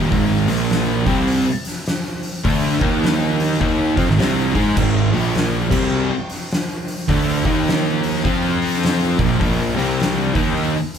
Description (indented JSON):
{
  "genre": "stoner and doom metal",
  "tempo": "103 BPM",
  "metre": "4/4",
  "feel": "swing 62% on 8ths",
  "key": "C minor",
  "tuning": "A4 = 440 Hz",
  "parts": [
    { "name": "crunchy overdriven guitar", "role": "riff", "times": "0.0-10.7 s", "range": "Eb2 to Ab4", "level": "-22 LUFS", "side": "right 1 dB", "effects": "none" },
    { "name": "thick fuzz guitar", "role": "riff", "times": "0.0-10.7 s", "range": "Eb2 to Ab4", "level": "-22 LUFS", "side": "left 8 dB", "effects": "distortion" },
    { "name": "thick fuzz guitar", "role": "riff", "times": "0.0-10.7 s", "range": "Eb2 to Ab4", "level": "-22 LUFS", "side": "right 9 dB", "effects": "distortion" },
    { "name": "fuzz picked electric bass", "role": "bass", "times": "0.0-10.7 s", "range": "Eb1 to Ab2", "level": "-25 LUFS", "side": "equal", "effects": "overdrive" },
    { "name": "oversized low-tuned drum kit", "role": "drums", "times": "0.1-11.0 s", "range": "crash cymbal, hi-hat, kick drum, snare drum", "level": "-22 LUFS", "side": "equal", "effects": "none" }
  ],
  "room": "light reverb",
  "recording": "band playing live in one room",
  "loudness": "-16 LUFS",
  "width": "side -8 dB against mid",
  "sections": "0.0-11.0 A section",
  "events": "none",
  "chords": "0.1 Ab5; 0.4 Bb5; 1.0 Csus2; 2.7 Eb5; 3.6 Ab5; 5.1 Bb5; 5.6 Csus2; 7.4 Eb5; 8.3 F5; 9.1 Bb5; 9.7 C5; 10.3 Eb5"
}